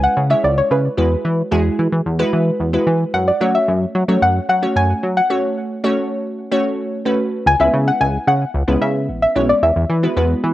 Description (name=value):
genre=dance-pop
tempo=111 BPM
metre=4/4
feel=straight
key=F# minor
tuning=A4 = 441 Hz
part: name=soft round pluck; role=melody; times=0.0-10.1 s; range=B4 to G#5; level=-17 LUFS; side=left 1 dB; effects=chorus, cassette tape
part: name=glassy wavetable pluck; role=accompaniment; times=0.0-10.5 s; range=G#3 to C#5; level=-20 LUFS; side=equal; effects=chorus, cassette tape
part: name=chorused synth bass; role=bass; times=0.0-10.5 s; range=A1 to F#3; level=-18 LUFS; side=equal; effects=none
room=light reverb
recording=home recording on cassette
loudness=-15 LUFS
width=side -15 dB against mid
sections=0.0-7.5 A section; 7.5-10.5 B section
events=break 5.3-7.5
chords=0.0 C#m7; 1.0 Eadd9; 3.1 F#m; 7.5 C#m7; 9.6 Eadd9